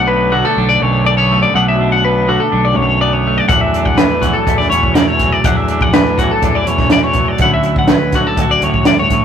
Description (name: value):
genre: math rock and midwest emo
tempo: 123 BPM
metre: 4/4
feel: straight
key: B minor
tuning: A4 = 442 Hz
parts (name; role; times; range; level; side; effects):
- clean electric guitar; accompaniment; 0.0-9.2 s; D2 to F#4; -18 LUFS; right 4 dB; none
- twelve-string electric guitar; arpeggios; 0.0-9.2 s; F#4 to F#5; -14 LUFS; left 4 dB; none
- fuzz fingered electric bass; bass; 0.0-9.2 s; B1 to E2; -18 LUFS; equal; overdrive
- compact cocktail drum kit; drums; 3.5-9.2 s; hi-hat, kick drum, snare drum; -14 LUFS; right 1 dB; none
room: moderate stone room reverb, RT60 1.1 s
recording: rough rehearsal-room recording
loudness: -10 LUFS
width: side -8 dB against mid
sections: 0.0-9.2 A section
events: none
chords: 0.0 Bm7; 3.5 E9sus4; 7.4 Dmaj9